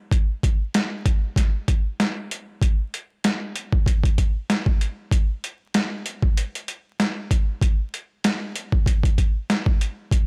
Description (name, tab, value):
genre	hip hop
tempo	96 BPM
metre	4/4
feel	swing 56% on 16ths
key	none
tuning	none
part	boom bap sampler-style drum kit	drums	0.1-10.3 s	hi-hat, kick drum, snare drum	-22 LUFS	equal	overdrive
room	little or no reverb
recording	dry, gritty hardware recording, vinyl crackle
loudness	-23 LUFS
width	mono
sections	0.0-2.6 A section; 2.6-10.3 B section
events	none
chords	none